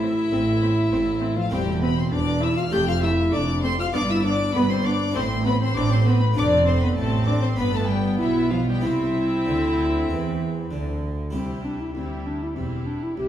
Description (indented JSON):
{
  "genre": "classical, baroque-style concerto movement with solo episodes",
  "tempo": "98 BPM",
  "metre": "4/4",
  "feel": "straight",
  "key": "C major",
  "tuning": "A4 = 439 Hz",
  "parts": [
    { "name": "mellow bass recorder", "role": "melody", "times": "0.0-13.3 s", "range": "F3 to G4", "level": "-25 LUFS", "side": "equal", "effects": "none" },
    { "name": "rich chamber violin section", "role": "melody", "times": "0.0-13.3 s", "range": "G4 to G6", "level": "-31 LUFS", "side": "left 3 dB", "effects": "none" },
    { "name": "rich chamber violin section", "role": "second line", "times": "0.0-13.3 s", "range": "E4 to G5", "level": "-29 LUFS", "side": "left 3 dB", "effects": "none" },
    { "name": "harpsichord", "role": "accompaniment", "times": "0.0-13.3 s", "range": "C2 to A4", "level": "-34 LUFS", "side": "left 1 dB", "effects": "none" },
    { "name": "warm chamber viola section", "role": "accompaniment", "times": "0.0-13.3 s", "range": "G3 to C4", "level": "-31 LUFS", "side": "right 2 dB", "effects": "none" },
    { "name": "rich chamber double bass section", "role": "bass", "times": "0.0-13.3 s", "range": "E1 to E2", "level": "-26 LUFS", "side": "right 2 dB", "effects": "none" },
    { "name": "warm chamber cello section", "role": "bass", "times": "0.0-13.3 s", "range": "C2 to E3", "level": "-28 LUFS", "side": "right 2 dB", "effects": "none" }
  ],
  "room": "wet recital hall reverb, RT60 1.5 s",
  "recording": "heard from further back in the room",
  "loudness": "-20 LUFS",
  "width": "side -11 dB against mid",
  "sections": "0.0-11.3 A section; 11.3-13.3 B section",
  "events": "none",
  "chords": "0.0 Am; 1.5 C/E; 2.7 F; 3.9 G7; 5.2 Am; 6.4 F; 7.6 G7; 8.8 C",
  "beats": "0.31 0.92 | 1.52 2.13 2.73 3.34 | 3.95 4.55 5.16 5.76 | 6.37 6.98 7.59 8.21 | 8.84 9.46 10.09 10.71 | 11.34 11.95 12.56 13.18"
}